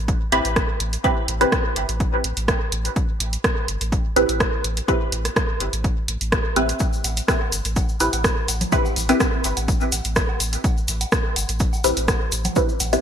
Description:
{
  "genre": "dub techno",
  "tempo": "125 BPM",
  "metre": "4/4",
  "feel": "straight",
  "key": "A minor",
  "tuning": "A4 = 442 Hz",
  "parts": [
    { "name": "pure sine sub bass", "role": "bass", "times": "0.0-13.0 s", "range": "G1 to A1", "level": "-26 LUFS", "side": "equal", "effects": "sidechain pumping" },
    { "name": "electronic kick drum", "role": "drums", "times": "0.1-12.7 s", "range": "none", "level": "-22 LUFS", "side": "equal", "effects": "none" },
    { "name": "punchy analog drum machine", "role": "drums", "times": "0.1-13.0 s", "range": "hi-hat, rim click", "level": "-24 LUFS", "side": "right 1 dB", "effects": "gated reverb" },
    { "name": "filtered dub chord stab", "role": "stabs", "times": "0.3-13.0 s", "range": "C4 to B4", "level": "-23 LUFS", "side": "equal", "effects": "phaser, sidechain pumping, dub echo" },
    { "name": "cabasa", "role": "percussion", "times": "6.8-13.0 s", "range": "none", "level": "-29 LUFS", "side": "left 4 dB", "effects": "none" },
    { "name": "woodblock and congas", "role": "percussion", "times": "7.0-12.9 s", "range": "none", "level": "-33 LUFS", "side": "right 3 dB", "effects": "sidechain pumping on perc, dub echo" }
  ],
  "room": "light reverb, digital ambience",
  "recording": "bright 1980s-style digital production",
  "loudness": "-19 LUFS",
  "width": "side -8 dB against mid",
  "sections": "0.0-13.0 A section",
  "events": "none",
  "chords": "0.0 Am9",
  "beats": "0.08 0.56 | 1.04 1.52 2.00 2.48 | 2.96 3.44 3.92 4.40 | 4.88 5.36 5.84 6.32 | 6.80 7.28 7.76 8.24 | 8.72 9.20 9.68 10.16 | 10.64 11.12 11.60 12.08 | 12.56"
}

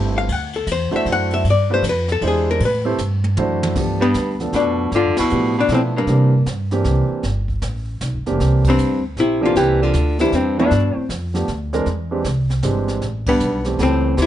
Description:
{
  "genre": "jazz, small-group swing and bop",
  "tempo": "155 BPM",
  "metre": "3/4",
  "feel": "swing 65% on 8ths",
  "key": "G mixolydian",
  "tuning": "A4 = 440 Hz",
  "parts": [
    { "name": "warm grand piano", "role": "accompaniment", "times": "0.0-14.2 s", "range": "E3 to C5", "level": "-23 LUFS", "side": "right 3 dB", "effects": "none" },
    { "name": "upright bass", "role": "bass", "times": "0.0-14.3 s", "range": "F1 to C3", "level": "-20 LUFS", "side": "equal", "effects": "none" },
    { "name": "archtop guitar, miked and amplified", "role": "melody", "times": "0.2-6.5, 8.7-11.1, 13.3-14.3 s", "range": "Bb3 to F#5", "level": "-19 LUFS", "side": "left 4 dB", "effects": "none" },
    { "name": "jazz brush drum kit", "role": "drums", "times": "0.3-14.3 s", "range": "brushed snare drum, crash cymbal, hi-hat, kick drum, ride cymbal, snare drum, toms", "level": "-28 LUFS", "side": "equal", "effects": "none" },
    { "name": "mellow baritone saxophone", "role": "second line", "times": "4.0-6.4, 8.7-11.1, 13.3-14.3 s", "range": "G2 to E3", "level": "-22 LUFS", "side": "right 2 dB", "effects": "none" }
  ],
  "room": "light reverb",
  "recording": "dark, warm production, nothing above 10.6 kHz",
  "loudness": "-16 LUFS",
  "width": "side -12 dB against mid",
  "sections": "0.0-3.8 A section; 3.8-14.3 B section",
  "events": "hollow-body jazz guitar solo 0.0-3.8; drum fill 3.0-3.8; band accent 5.1, 8.6, 13.2",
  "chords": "0.3 D9; 1.4 G9; 2.2 E7alt; 2.6 Am7; 3.4 D9; 3.8 G9; 6.1 C9; 7.2 Gadd9; 8.4 C9; 10.7 G7; 11.9 E7alt; 13.0 Am7",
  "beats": "| 0.28 0.67 1.05 | 1.44 1.83 2.21 | 2.60 2.99 3.37 | 3.76 4.15 4.54 | 4.92 5.31 5.70 | 6.08 6.47 6.85 | 7.24 7.63 8.01 | 8.40 8.78 9.17 | 9.55 9.94 10.32 | 10.71 11.10 11.48 | 11.87 12.25 12.64 | 13.02 13.41 13.80 | 14.18"
}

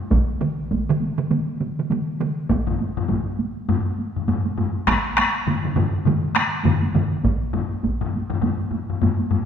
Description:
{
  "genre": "japanese traditional, taiko drum ensemble",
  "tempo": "101 BPM",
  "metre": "4/4",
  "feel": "swing 60% on 16ths",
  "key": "none",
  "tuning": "none",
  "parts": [
    { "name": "taiko ensemble", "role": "percussion", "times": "0.1-9.5 s", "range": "none", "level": "-26 LUFS", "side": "right 2 dB", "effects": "none" },
    { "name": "taiko ensemble", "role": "percussion", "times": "0.1-8.0 s", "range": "none", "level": "-24 LUFS", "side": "right 1 dB", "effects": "none" },
    { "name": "taiko ensemble", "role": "percussion", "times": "0.4-7.1 s", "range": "none", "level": "-23 LUFS", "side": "right 3 dB", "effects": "none" },
    { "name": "taiko ensemble", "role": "percussion", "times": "2.7-9.5 s", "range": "none", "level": "-23 LUFS", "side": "left 4 dB", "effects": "none" }
  ],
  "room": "wet scoring stage reverb, RT60 1.8 s",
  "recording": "minimal, uncompressed stereo recording",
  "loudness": "-20 LUFS",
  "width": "side -8 dB against mid",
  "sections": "0.0-9.5 A section",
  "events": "none",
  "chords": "none",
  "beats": "| 0.11 0.71 1.31 1.90 | 2.50 3.10 3.69 4.28 | 4.88 5.47 6.07 6.66 | 7.25 7.84 8.43 9.02"
}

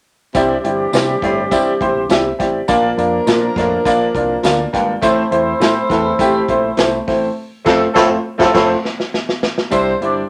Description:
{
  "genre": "uptempo 1960s-style soul",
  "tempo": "102 BPM",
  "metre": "4/4",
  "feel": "straight",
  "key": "C mixolydian",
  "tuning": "A4 = 441 Hz",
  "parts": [
    { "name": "clear upright piano", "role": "accompaniment", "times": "0.3-10.2 s", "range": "G3 to G5", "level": "-18 LUFS", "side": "equal", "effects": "none" },
    { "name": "mellow baritone saxophone", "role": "riff", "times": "0.3-8.7 s", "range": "E2 to C3", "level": "-22 LUFS", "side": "equal", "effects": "none" },
    { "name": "fingered electric bass", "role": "bass", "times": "0.3-10.2 s", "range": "F1 to C3", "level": "-29 LUFS", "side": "equal", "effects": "none" },
    { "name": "vintage drum kit", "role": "drums", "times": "0.3-10.2 s", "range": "crash cymbal, hi-hat, kick drum, snare drum", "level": "-22 LUFS", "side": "equal", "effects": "none" },
    { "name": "tambourine", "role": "percussion", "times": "0.3-9.9 s", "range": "none", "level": "-35 LUFS", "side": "equal", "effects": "none" },
    { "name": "dark horn section", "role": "second line", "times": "0.4-10.3 s", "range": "E3 to D5", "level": "-22 LUFS", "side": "equal", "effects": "none" },
    { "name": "mellow electric guitar", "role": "stabs", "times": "0.9-8.7 s", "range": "E4 to D5", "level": "-22 LUFS", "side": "equal", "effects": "none" }
  ],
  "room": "wet studio reverb, RT60 0.6 s",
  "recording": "none",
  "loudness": "-16 LUFS",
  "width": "mono",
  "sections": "0.3-9.7 A section",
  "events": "upright piano fill 4.1-5.0; band accent 7.4-9.7; drum fill 8.5-9.7",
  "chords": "0.3 Cadd9; 2.7 Bb; 5.0 Am; 7.4 F; 9.7 Cadd9",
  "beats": "| 0.35 0.93 1.51 2.10 | 2.68 3.27 3.85 4.44 | 5.02 5.61 6.20 6.78 | 7.37 7.96 8.55 9.13 | 9.72"
}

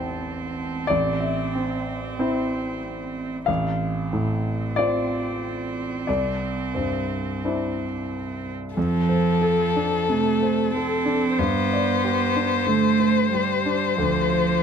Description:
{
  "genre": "neoclassical piano and strings",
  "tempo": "92 BPM",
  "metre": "4/4",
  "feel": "rubato",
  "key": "unclear",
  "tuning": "A4 = 435 Hz",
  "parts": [
    { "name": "rich cello", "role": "second line", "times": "0.0-14.6 s", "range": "F3 to C4", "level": "-26 LUFS", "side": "right 6 dB", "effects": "none" },
    { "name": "warm concert grand piano", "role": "accompaniment", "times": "0.0-14.6 s", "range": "A1 to A5", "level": "-25 LUFS", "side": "left 1 dB", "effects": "none" },
    { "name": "warm violin", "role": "melody", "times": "8.8-14.6 s", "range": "A4 to C5", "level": "-24 LUFS", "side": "left 8 dB", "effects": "none" }
  ],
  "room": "light reverb",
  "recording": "close, detailed microphones",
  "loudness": "-21 LUFS",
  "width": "side -7 dB against mid",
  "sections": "0.0-8.8 A section; 8.8-14.6 B section",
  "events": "none",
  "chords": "0.0 Am; 3.5 F/A; 6.1 Cadd9; 8.8 F6; 11.4 Gsus4; 14.0 Dm7",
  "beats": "0.25 | 0.90 1.55 2.19 2.84 | 3.48 4.12 4.76 5.41 | 6.07 6.75 7.42 8.10 | 8.77 9.43 10.08 10.73 | 11.38 12.02 12.67 13.32 | 13.96 14.61"
}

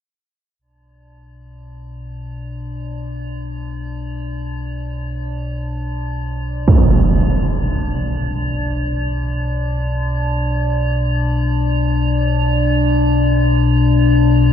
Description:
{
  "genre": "dark ambient drone",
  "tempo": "free time",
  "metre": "none",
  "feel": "none",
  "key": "B minor",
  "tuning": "A4 = 439 Hz",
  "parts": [
    { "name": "deep rumbling drone", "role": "drone", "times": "1.3-14.5 s", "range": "B1 to B2", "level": "-19 LUFS", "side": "equal", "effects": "built-in reverb" },
    { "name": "metallic inharmonic drone", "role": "texture", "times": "1.7-14.5 s", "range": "D4", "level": "-22 LUFS", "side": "left 3 dB", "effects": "chorus, built-in reverb, phaser" },
    { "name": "impact", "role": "percussion", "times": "6.7-6.9 s", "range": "none", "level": "-15 LUFS", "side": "right 1 dB", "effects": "low-pass filter on sfx" }
  ],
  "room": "wet cathedral reverb, RT60 4.9 s",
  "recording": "none",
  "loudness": "-16 LUFS",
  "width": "side -9 dB against mid",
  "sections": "0.6-14.5 A section",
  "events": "fade-in on synth drone 0.6-14.5",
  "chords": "0.6 Bm",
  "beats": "free time"
}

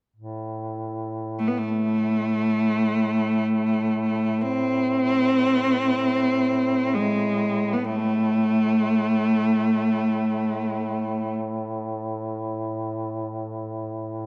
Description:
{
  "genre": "caucasian folk",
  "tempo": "free time",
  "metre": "none",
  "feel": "none",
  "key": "A harmonic minor",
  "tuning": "A4 = 440 Hz",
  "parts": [
    { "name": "warm duduk", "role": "drone", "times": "0.2-14.3 s", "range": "A2", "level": "-32 LUFS", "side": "equal", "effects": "none" },
    { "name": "clear cello", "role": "melody", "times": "1.4-11.3 s", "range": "G#3 to C4", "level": "-24 LUFS", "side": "equal", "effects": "none" }
  ],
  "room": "wet church reverb, RT60 3.1 s",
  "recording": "worn, warbling old tape, cassette tape, warbly pitch drift",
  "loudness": "-24 LUFS",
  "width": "mono",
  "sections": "0.2-14.3 A section",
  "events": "none",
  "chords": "none",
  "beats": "free time"
}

